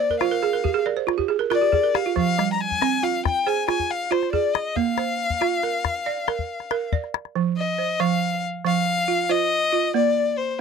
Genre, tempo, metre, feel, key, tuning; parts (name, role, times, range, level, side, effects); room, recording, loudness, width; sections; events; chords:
west african traditional, West African string and xylophone music; 92 BPM (dotted quarters); 12/8; straight; F dorian; A4 = 442 Hz
rich violin; melody; 0.0-10.6 s; C5 to Bb5; -23 LUFS; left 6 dB
balafon; arpeggios; 0.0-10.4 s; F3 to F5; -24 LUFS; right 11 dB
calabash; percussion; 0.1-7.3 s; -26 LUFS; left 8 dB
light reverb; dry, close 1970s-style studio recording; -20 LUFS; side -6 dB against mid
0.0-7.4 A section; 7.4-10.6 B section
balafon fill 0.0-2.2
0.0 Bb; 2.2 Fm; 4.8 Bb; 7.4 F5; 9.9 Bb